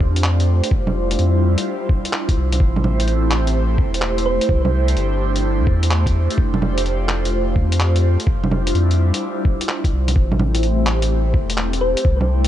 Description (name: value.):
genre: future garage.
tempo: 127 BPM.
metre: 4/4.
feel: swing 67% on 16ths.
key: A minor.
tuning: A4 = 439 Hz.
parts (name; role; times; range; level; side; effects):
airy breathy pad; sustained chords; 0.0-12.5 s; G3 to C5; -23 LUFS; right 1 dB; chorus, phaser, sidechain pumping.
warm sub bass; bass; 0.0-12.5 s; E1 to F2; -18 LUFS; equal; none.
electronic kick drum; drums; 0.0-12.2 s; none; -18 LUFS; equal; none.
lo-fi sampler-style drum kit; drums; 0.2-12.5 s; bongos, handclaps, hi-hat; -23 LUFS; right 1 dB; none.
thumb-piano-like synth pluck; melody; 4.3-4.5, 11.8-12.1 s; C5; -23 LUFS; equal; wide subtle chorus, analog delay.
room: digital ambience.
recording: nothing above 10.7 kHz.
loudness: -16 LUFS.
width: side -12 dB against mid.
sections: 0.0-12.5 A section.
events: none.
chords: 0.0 F69; 0.7 Dm11/F; 2.6 Am7; 4.5 C69; 6.4 F69; 8.3 Dm11/F; 10.2 Am7.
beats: 0.24 | 0.71 1.19 1.66 2.13 | 2.60 3.08 3.55 4.02 | 4.49 4.97 5.44 5.91 | 6.38 6.86 7.33 7.80 | 8.27 8.74 9.22 9.69 | 10.16 10.63 11.11 11.58 | 12.05.